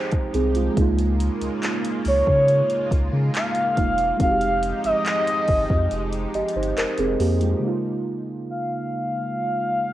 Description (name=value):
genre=contemporary R&B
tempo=70 BPM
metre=4/4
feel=straight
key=unclear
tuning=A4 = 440 Hz
part: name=muted felt-like synth keys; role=accompaniment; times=0.0-9.9 s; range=Db3 to Eb5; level=-25 LUFS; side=right 2 dB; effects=chorus
part: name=lush unison pad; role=sustained chords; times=0.0-7.6 s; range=Db3 to G4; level=-32 LUFS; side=equal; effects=chorus, phaser
part: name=smooth R&B drum kit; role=drums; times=0.1-7.6 s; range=handclaps, hi-hat, kick drum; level=-26 LUFS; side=equal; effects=cassette tape
part: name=sub bass with octave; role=bass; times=0.3-7.5 s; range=E1 to Db3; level=-24 LUFS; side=equal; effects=none
part: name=gliding portamento lead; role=melody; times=2.1-9.9 s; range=Db5 to F5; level=-21 LUFS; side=equal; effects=chorus, analog delay
room=light reverb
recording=home recording on cassette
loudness=-20 LUFS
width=side -14 dB against mid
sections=0.0-7.6 A section; 7.6-9.9 B section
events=break 5.9-7.6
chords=0.0 Fm9; 0.8 Db6; 4.2 Fm9; 7.6 Db6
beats=| 0.77 1.63 2.48 3.34 | 4.20 5.06 5.91 6.77 | 7.63 8.48 9.34